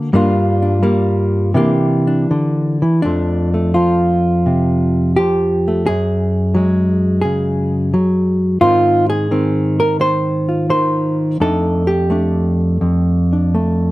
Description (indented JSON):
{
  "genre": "solo jazz",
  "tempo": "79-90 BPM",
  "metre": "4/4",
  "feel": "swing 69% on 8ths, rubato",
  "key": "unclear",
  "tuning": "A4 = 440 Hz",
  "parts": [
    { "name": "hollow-body jazz guitar", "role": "solo", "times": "0.0-13.9 s", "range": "F2 to C5", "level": "-13 LUFS", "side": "equal", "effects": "none" }
  ],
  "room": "light reverb",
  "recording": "close, detailed microphones",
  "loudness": "-13 LUFS",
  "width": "side -18 dB against mid",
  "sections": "0.0-3.0 A section; 3.0-13.9 B section",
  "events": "hollow-body jazz guitar solo 0.0-3.0",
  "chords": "0.1 Gm7; 1.5 C9; 3.0 F6; 5.9 Gbsus2; 8.6 Ab6; 11.4 F13",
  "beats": "| 0.13 0.83 1.54 2.29 | 3.04 3.75 4.47 5.18 | 5.88 6.56 7.24 7.92 | 8.60 9.29 9.99 10.69 | 11.39 12.09 12.81 13.54"
}